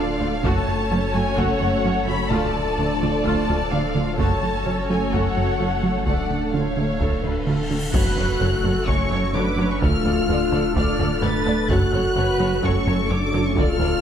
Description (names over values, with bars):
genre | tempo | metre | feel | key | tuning
cinematic, hybrid orchestral and electronic film score | 128 BPM | 4/4 | straight | F# harmonic minor | A4 = 440 Hz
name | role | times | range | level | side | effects
rich symphonic violin section | melody | 0.0-14.0 s | F5 to A6 | -28 LUFS | left 3 dB | none
warm symphonic violin section | second line | 0.0-13.9 s | A4 to D5 | -29 LUFS | left 1 dB | none
warm symphonic viola section | accompaniment | 0.0-14.0 s | A3 to D5 | -30 LUFS | right 2 dB | none
hollow soft pad | sustained chords | 0.0-14.0 s | A3 to A4 | -28 LUFS | left 1 dB | ensemble chorus
warm French horn section | sustained chords | 0.0-14.0 s | F3 to A4 | -28 LUFS | left 2 dB | none
plucky analog bass | riff | 0.0-13.9 s | D2 to F#3 | -26 LUFS | right 2 dB | none
clear studio double bass section | bass | 0.0-13.9 s | F#1 to D2 | -30 LUFS | right 3 dB | none
rich studio cello section | bass | 0.0-13.9 s | D2 to F#2 | -29 LUFS | right 2 dB | none
warm sub bass | bass | 0.0-14.0 s | D1 to F#1 | -30 LUFS | equal | none
taiko ensemble | drums | 0.4-14.0 s | none | -28 LUFS | equal | none
cymbal swell and impact | sound effects | 7.2-9.8 s | none | -33 LUFS | left 1 dB | none
room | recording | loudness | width
moderate scoring stage reverb, RT60 1.5 s | none | -19 LUFS | side -8 dB against mid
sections
0.0-7.9 A section; 7.9-14.0 B section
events
cymbal swell 7.2-7.9; impact 7.9-9.8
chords
0.4 F#m; 2.3 Dm; 4.2 F#m; 6.1 Dm; 7.9 F#m; 9.8 Dm; 11.7 F#m